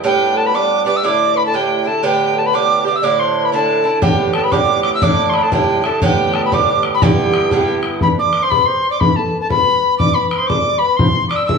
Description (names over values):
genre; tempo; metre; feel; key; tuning
celtic folk, Celtic polka; 120 BPM; 2/4; swing 63% on 8ths; G major; A4 = 441 Hz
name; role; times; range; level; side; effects
mellow hollow wooden flute; second line; 0.0-11.6 s; G4 to F#5; -21 LUFS; left 1 dB; none
Irish bouzouki; accompaniment; 0.0-8.5 s; G2 to G4; -18 LUFS; right 4 dB; none
wooden whistle; melody; 0.1-11.6 s; G5 to E6; -16 LUFS; equal; none
bodhran; percussion; 4.0-11.6 s; none; -18 LUFS; left 1 dB; none
room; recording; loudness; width
wet large studio reverb, RT60 1.3 s; band playing live in one room, small room ambience; -13 LUFS; side -5 dB against mid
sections
0.0-8.0 A section; 8.0-11.6 B section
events
none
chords
0.0 Gadd9; 1.0 Dsus2; 2.0 Gadd9; 3.0 Dsus2; 4.0 Gadd9; 5.0 Dsus2; 6.0 Gadd9; 7.0 G6; 8.0 N.C.